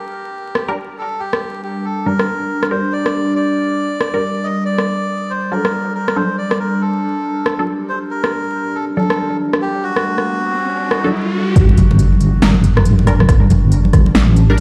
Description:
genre	deep dubstep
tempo	139 BPM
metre	4/4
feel	swing 61% on 16ths, half-time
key	G harmonic minor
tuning	A4 = 440 Hz
part	melodica	melody	0.0-11.1 s	F#4 to Eb5	-25 LUFS	equal	dub echo
part	overtone-sweeping drone	sustained chords	1.5-14.6 s	G3 to D4	-24 LUFS	equal	chorus, built-in reverb
part	deep house drum kit	drums	0.6-14.6 s	hi-hat, rim click, snare drum	-21 LUFS	equal	none
part	filtered dub chord stab	stabs	0.7-14.6 s	F#3 to Bb4	-25 LUFS	equal	phaser, dub echo
part	riser and impact	sound effects	9.5-13.3 s	none	-25 LUFS	equal	none
part	deep soft wobble bass	bass	11.6-14.6 s	G1 to A1	-14 LUFS	equal	chorus
part	electronic kick drum	drums	11.6-14.0 s	none	-14 LUFS	equal	none
part	congas	percussion	11.7-14.6 s	none	-20 LUFS	equal	dub echo
room	light reverb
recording	played on a big sound system in a bare room, large studio reverb, vinyl crackle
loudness	-16 LUFS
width	mono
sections	0.0-11.6 A section; 11.6-14.6 B section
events	filter sweep on synth drone 0.0-11.6; riser 9.5-11.6; drop 11.6-14.6; impact 11.6-13.3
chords	0.0 Gm; 4.7 D; 11.6 Gm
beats	0.34 0.77 | 1.20 1.63 2.06 2.50 | 2.93 3.36 3.79 4.22 | 4.65 5.08 5.52 5.95 | 6.38 6.81 7.24 7.67 | 8.11 8.54 8.97 9.40 | 9.83 10.27 10.70 11.13 | 11.56 11.99 12.42 12.86 | 13.29 13.72 14.15 14.58

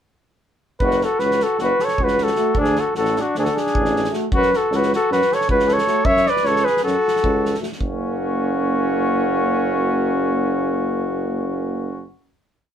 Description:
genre	balkan folk, Balkan brass band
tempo	309 BPM (eighths)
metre	9/8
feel	straight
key	F# minor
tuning	A4 = 440 Hz
part	warm flugelhorn	melody	0.8-12.1 s	F#4 to E5	-20 LUFS	equal	none
part	warm trumpet	second line	0.8-12.0 s	C#4 to C#5	-24 LUFS	left 2 dB	none
part	warm tuba	bass	0.8-12.1 s	F#1 to F#2	-24 LUFS	right 1 dB	none
part	loose indie drum kit	percussion	0.8-8.0 s	kick drum, snare drum	-27 LUFS	equal	none
part	clear trombone	accompaniment	2.4-12.0 s	A3 to A#3	-27 LUFS	right 3 dB	none
part	mellow euphonium	accompaniment	2.4-12.1 s	F#4	-27 LUFS	left 6 dB	none
room	moderate small room reverb, RT60 0.6 s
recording	band playing live in one room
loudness	-17 LUFS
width	side -9 dB against mid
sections	0.8-7.8 A section; 7.8-11.3 final chord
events	none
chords	0.8 F#m; 2.6 D; 4.3 F#m; 7.8 F#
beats	| 0.80 1.00 1.19 1.39 1.58 1.78 1.98 2.17 2.37 | 2.56 2.75 2.95 3.14 3.34 3.53 3.73 3.92 4.12 | 4.31 4.50 4.70 4.89 5.08 5.28 5.47 5.66 5.86 | 6.05 6.24 6.44 6.63 6.82 7.02 7.21 7.41 7.60 | 7.79 7.99 8.18 8.37 8.57 8.76 8.96 9.15 9.35 | 9.54 9.73 9.93 10.12 10.32 10.51 10.71 10.90 11.10

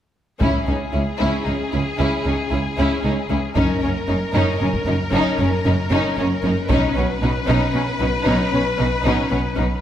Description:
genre	cinematic, epic orchestral film score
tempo	76 BPM (dotted quarters)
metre	6/8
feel	straight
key	C# dorian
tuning	A4 = 440 Hz
part	rich symphonic violin section	melody	0.4-9.8 s	G#4 to B4	-26 LUFS	left 3 dB	none
part	warm symphonic violin section	second line	0.4-9.7 s	C#4 to E4	-25 LUFS	left 2 dB	none
part	warm symphonic viola section	accompaniment	0.4-9.6 s	C#4	-25 LUFS	equal	none
part	rich symphonic double bass section	bass	0.4-9.6 s	F#1 to C#2	-24 LUFS	right 1 dB	none
part	warm symphonic cello section	bass	0.4-9.7 s	C#2 to B2	-24 LUFS	right 1 dB	none
part	taiko ensemble	drums	0.4-7.7 s	none	-25 LUFS	equal	none
room	moderate scoring stage reverb, RT60 1.7 s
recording	none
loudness	-17 LUFS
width	side -10 dB against mid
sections	0.4-9.8 A section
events	build-up 0.4-9.8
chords	0.4 C#m; 3.6 F#6; 6.7 Badd9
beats	| 0.42 1.21 | 2.00 2.79 | 3.57 4.35 | 5.13 5.91 | 6.70 7.48 | 8.26 9.05

